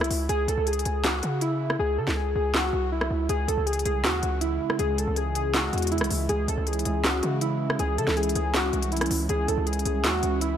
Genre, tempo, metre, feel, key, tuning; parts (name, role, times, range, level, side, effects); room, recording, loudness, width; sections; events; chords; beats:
hip hop, trap; 160 BPM; 4/4; half-time; C# harmonic minor; A4 = 439 Hz
warbly lo-fi synth keys; melody; 0.0-10.6 s; E4 to A4; -27 LUFS; left 1 dB; chorus, ping-pong delay
hard-hitting 808-style bass; bass; 0.0-10.6 s; B#1 to C#3; -28 LUFS; equal
trap drum kit; drums; 0.0-10.5 s; handclaps, hi-hat, rim click, snare drum; -29 LUFS; equal
warm analog pad; sustained chords; 3.3-10.6 s; C#3 to E4; -32 LUFS; right 2 dB; chorus
light reverb; -23 LUFS; side -9 dB against mid
0.0-10.6 A section
hi-hats muted 1.8-3.3
0.0 C#m
| 0.29 0.67 1.04 1.42 | 1.79 2.17 2.54 2.92 | 3.29 3.67 4.04 4.42 | 4.79 5.17 5.54 5.92 | 6.29 6.67 7.04 7.42 | 7.79 8.17 8.54 8.92 | 9.29 9.67 10.04 10.42